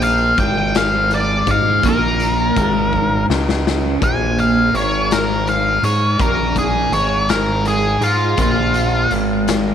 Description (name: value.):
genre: psychedelic rock.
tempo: 55 BPM (dotted quarters).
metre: 6/8.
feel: straight.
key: unclear.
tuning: A4 = 440 Hz.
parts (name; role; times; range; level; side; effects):
octave-fuzz lead guitar; melody; 0.0-9.1 s; F4 to Ab5; -18 LUFS; left 1 dB; wah, distortion, tape echo.
thick fuzz guitar; riff; 0.0-9.7 s; Ab2 to Ab4; -19 LUFS; right 1 dB; distortion, phaser.
gritty driven synth bass; bass; 0.0-9.7 s; Ab1 to Ab2; -22 LUFS; right 1 dB; none.
raw garage drum kit; drums; 0.0-9.7 s; hi-hat, kick drum, snare drum; -22 LUFS; left 4 dB; none.
room: moderate spring reverb, RT60 2.5 s.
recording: 1960s-style stereo.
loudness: -14 LUFS.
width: side -9 dB against mid.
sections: 0.0-4.0 A section; 4.0-9.7 B section.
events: drum fill 2.9-4.0; lead electric guitar solo 4.0-9.7.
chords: 0.0 Bb5.